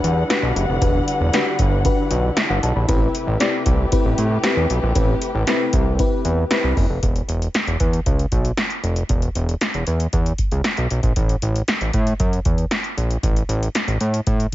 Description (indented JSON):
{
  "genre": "early-eighties boogie funk",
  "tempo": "116 BPM",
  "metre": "4/4",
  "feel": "straight",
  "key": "unclear",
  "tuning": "A4 = 437 Hz",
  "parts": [
    { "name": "FM electric piano with soft pad layer", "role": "accompaniment", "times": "0.0-6.9 s", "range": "C4 to B5", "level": "-23 LUFS", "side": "left 3 dB", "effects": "chorus" },
    { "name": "dark studio string section", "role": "sustained chords", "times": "0.0-7.0 s", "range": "C3 to F#5", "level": "-26 LUFS", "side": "equal", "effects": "none" },
    { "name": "fat analog bass", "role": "bass", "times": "0.0-14.5 s", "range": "E1 to A2", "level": "-20 LUFS", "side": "equal", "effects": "none" },
    { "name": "electro analog drum machine", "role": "drums", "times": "0.0-14.5 s", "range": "hi-hat, kick drum, snare drum", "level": "-21 LUFS", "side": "equal", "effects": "none" }
  ],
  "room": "digital ambience",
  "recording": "nothing above 7.6 kHz",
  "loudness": "-17 LUFS",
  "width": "side -15 dB against mid",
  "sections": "0.0-7.0 A section; 7.0-14.5 B section",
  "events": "none",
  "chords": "0.0 Em9; 2.9 Am9; 7.0 E5; 11.2 A5"
}